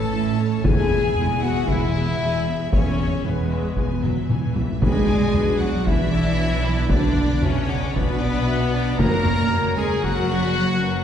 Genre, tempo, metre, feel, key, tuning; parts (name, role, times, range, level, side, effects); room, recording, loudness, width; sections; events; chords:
cinematic, epic orchestral film score; 115 BPM; 4/4; straight; B dorian; A4 = 440 Hz
rich symphonic violin section; melody; 0.0-11.0 s; B4 to A#5; -33 LUFS; left 3 dB
mellow flute section; second line; 0.0-11.0 s; A#4 to A5; -33 LUFS; left 5 dB
warm chamber violin section; second line; 0.0-11.0 s; A#4 to D6; -35 LUFS; left 4 dB
warm symphonic viola section; accompaniment; 0.0-11.0 s; E3 to A#4; -30 LUFS; equal
warm French horn section; sustained chords; 0.0-11.0 s; B3 to A#4; -26 LUFS; left 4 dB
dark symphonic double bass section; bass; 0.0-11.0 s; E1 to B1; -26 LUFS; right 2 dB
warm symphonic cello section; bass; 0.0-11.0 s; E2 to A#3; -25 LUFS; right 2 dB
taiko ensemble; drums; 0.6-10.5 s; -24 LUFS; equal
warm trumpet; stabs; 4.8-11.0 s; B3 to A#4; -30 LUFS; equal
wet concert hall reverb, RT60 2.2 s; heard from further back in the room, nothing above 10.5 kHz; -18 LUFS; side -9 dB against mid
0.0-4.8 A section; 4.8-11.0 B section
drum fill 4.0-4.8
0.0 A; 0.7 E; 4.8 Bm; 9.0 F#